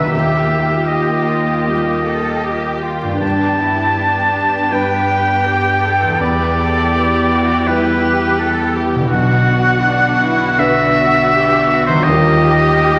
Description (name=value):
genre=cinematic, emotional film score for orchestra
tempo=81 BPM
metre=4/4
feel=rubato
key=unclear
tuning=A4 = 439 Hz
part: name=rich studio violin section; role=melody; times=0.0-13.0 s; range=F#4 to G4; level=-26 LUFS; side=equal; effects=none
part: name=bright oboe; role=second line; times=0.0-13.0 s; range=B4 to A5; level=-18 LUFS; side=equal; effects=none
part: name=dark baby grand piano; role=accompaniment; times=0.0-13.0 s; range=B1 to B4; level=-22 LUFS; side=equal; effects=none
part: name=rich studio viola section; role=accompaniment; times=0.0-13.0 s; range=Bb3 to F4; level=-26 LUFS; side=equal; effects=none
part: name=concert harp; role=arpeggios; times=0.0-13.0 s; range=E2 to B4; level=-24 LUFS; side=equal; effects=none
part: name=rich studio cello section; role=bass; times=0.0-13.0 s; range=D4 to B4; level=-24 LUFS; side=equal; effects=none
part: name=rich studio double bass section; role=bass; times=0.0-13.0 s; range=B1 to G2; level=-29 LUFS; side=equal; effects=none
room=wet scoring stage reverb, RT60 1.6 s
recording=vinyl crackle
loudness=-15 LUFS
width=mono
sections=0.0-13.0 A section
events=none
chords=0.1 Ebadd9; 3.2 Gadd9; 6.2 Em7; 9.1 Bm; 12.1 Ebadd9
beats=| 0.13 0.90 1.67 2.44 | 3.21 3.98 4.72 5.46 | 6.20 6.94 7.67 8.40 | 9.13 9.86 10.59 11.32 | 12.06 12.82